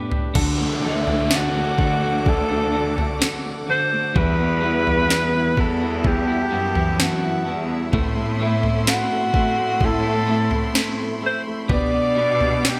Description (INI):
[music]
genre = pop ballad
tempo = 64 BPM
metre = 4/4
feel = straight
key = unclear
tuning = A4 = 440 Hz
[part]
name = warm baby grand piano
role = accompaniment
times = 0.0-12.8 s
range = D3 to D5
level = -29 LUFS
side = equal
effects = subtle chorus
[part]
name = clean electric guitar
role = arpeggios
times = 0.0-12.8 s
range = E2 to B4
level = -31 LUFS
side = equal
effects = digital delay
[part]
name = clear studio cello section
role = bass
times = 0.0-12.8 s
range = D2 to B2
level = -28 LUFS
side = equal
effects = none
[part]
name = smooth R&B drum kit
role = drums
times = 0.1-12.8 s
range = crash cymbal, kick drum, snare drum, toms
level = -25 LUFS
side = equal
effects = gated reverb
[part]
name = warm studio string section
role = sustained chords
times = 0.4-12.8 s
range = E4 to D6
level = -36 LUFS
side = equal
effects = none
[part]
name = downlifter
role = sound effects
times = 0.4-7.9 s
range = none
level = -36 LUFS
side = equal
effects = none
[part]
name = breathy alto saxophone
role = melody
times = 0.9-12.8 s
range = E4 to D5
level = -25 LUFS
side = equal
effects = none
[sound]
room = moderate plate reverb, RT60 3.0 s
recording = bright 1980s-style digital production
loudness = -21 LUFS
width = mono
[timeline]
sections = 0.4-12.8 A section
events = drum fill 0.0-0.4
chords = 0.4 D; 4.2 Emadd9; 7.9 Amadd9; 11.7 G/B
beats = | 0.35 1.31 2.26 3.21 | 4.16 5.10 6.04 6.99 | 7.93 8.87 9.81 10.75 | 11.70 12.64